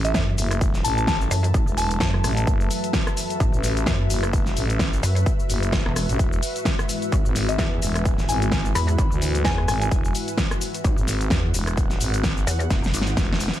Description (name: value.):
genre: bass house.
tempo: 129 BPM.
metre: 4/4.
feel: swing 57% on 16ths.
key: unclear.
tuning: A4 = 440 Hz.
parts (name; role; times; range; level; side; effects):
soft synth bell; melody; 0.0-2.4, 7.5-9.9 s; E5 to B5; -29 LUFS; left 2 dB; chorus, dub echo.
dark analog pad; sustained chords; 0.0-13.6 s; F#3 to B4; -33 LUFS; right 1 dB; chorus, sidechain pumping.
growling FM bass; bass; 0.0-13.5 s; E1 to D2; -24 LUFS; equal; overdrive, sidechain pumping.
big-room dance drum kit; drums; 0.0-13.6 s; cabasa, hi-hat, rim click, snare drum; -27 LUFS; equal; none.
ethereal airy pad; texture; 0.1-13.6 s; F#4 to A5; -32 LUFS; left 2 dB; ensemble chorus, built-in reverb, sidechain pumping.
pulsing pluck wobble bass; bass; 0.1-13.2 s; E1 to F#2; -23 LUFS; equal; chorus, tube saturation, sidechain pumping.
electronic kick drum; drums; 0.1-13.3 s; none; -23 LUFS; equal; none.
room: little or no reverb.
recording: none.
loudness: -20 LUFS.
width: side -12 dB against mid.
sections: 0.0-13.6 A section.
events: drum fill 12.7-13.6.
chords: 0.0 F#m7; 6.2 E.